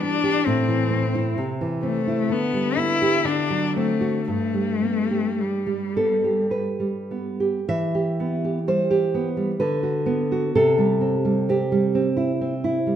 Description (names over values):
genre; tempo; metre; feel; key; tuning
romantic duo for cello and classical guitar; 48-69 BPM; 3/4; rubato; G major, E minor from 7.7 s; A4 = 443 Hz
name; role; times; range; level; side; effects
rich cello; melody; 0.0-6.5 s; G3 to E4; -23 LUFS; left 5 dB; none
nylon-string guitar; accompaniment; 0.0-13.0 s; G2 to E5; -21 LUFS; right 2 dB; none
room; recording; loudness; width
moderate scoring stage reverb, RT60 1.9 s; minimal, uncompressed stereo recording; -20 LUFS; side -10 dB against mid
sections
0.0-7.7 A section; 7.7-13.0 B section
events
none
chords
0.5 Am; 1.4 Am/C; 2.3 G/D; 3.3 D7; 4.3 G; 7.7 Em; 9.6 Bm/D; 10.5 C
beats
0.45 | 1.36 2.30 3.27 | 4.30 5.41 6.52 | 7.69 8.68 9.60 | 10.53 11.46 12.39